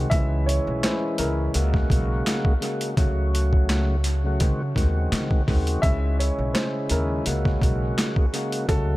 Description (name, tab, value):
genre	hip hop, boom-bap hip-hop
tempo	84 BPM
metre	4/4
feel	swing 54% on 16ths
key	unclear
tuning	A4 = 441 Hz
part	tonewheel organ	accompaniment	0.0-9.0 s	C#2 to F#4	-27 LUFS	left 1 dB	overdrive, slow rotary speaker, high-pass filter, low-pass filter, dub echo
part	upright bass	bass	0.0-9.0 s	B1 to C#3	-24 LUFS	equal	none
part	dark upright piano	melody	0.1-9.0 s	A4 to E5	-31 LUFS	right 1 dB	high-pass filter, low-pass filter, dub echo
part	boom bap sampler-style drum kit	drums	0.1-8.9 s	handclaps, hi-hat, kick drum, snare drum	-23 LUFS	equal	overdrive
room	small room ambience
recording	echo-heavy mix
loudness	-20 LUFS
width	side -18 dB against mid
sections	0.0-9.0 A section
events	none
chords	0.1 C#m; 1.5 F#add9; 3.0 F#m/C#; 4.4 G#7/C#; 5.8 C#madd9; 7.3 F#add9